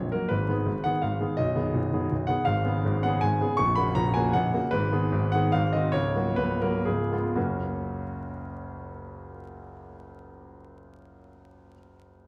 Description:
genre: classical, romantic triple-time dance for piano with dotted rhythms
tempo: 113-178 BPM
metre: 3/4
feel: rubato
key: F# major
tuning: A4 = 440 Hz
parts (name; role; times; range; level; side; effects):
- bright concert grand piano; solo; 0.0-12.3 s; A#0 to C#6; -27 LUFS; equal; none
room: wet recital hall reverb, RT60 1.7 s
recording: dark, warm production, vinyl crackle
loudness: -26 LUFS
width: mono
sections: 0.0-7.4 A section; 7.4-10.3 B section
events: slowing down 4.2-7.4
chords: 0.3 G#m; 1.4 G#m/B; 2.5 C#7/G#; 3.6 F#/A#; 4.7 G#m; 5.5 G#7; 5.9 F#/C#; 6.9 C#7; 7.4 F#

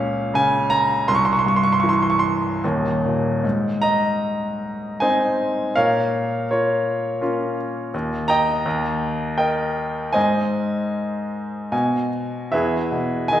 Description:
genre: classical, lyrical solo piano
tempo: 72-84 BPM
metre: 3/4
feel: rubato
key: Ab major from 3.4 s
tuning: A4 = 440 Hz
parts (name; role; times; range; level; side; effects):
- bright grand piano; solo; 0.0-13.4 s; Eb1 to Db6; -19 LUFS; equal; none
room: wet scoring stage reverb, RT60 1.5 s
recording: heard from further back in the room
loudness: -19 LUFS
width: side -11 dB against mid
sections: 0.0-3.4 A section; 3.4-12.5 B section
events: grand piano fill 11.3-12.5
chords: 0.0 Bbm/Db; 1.1 C; 2.6 Eb5; 3.4 Ab; 5.8 Bbm; 7.9 Eb; 10.2 Ab; 11.7 B; 12.5 Emaj7

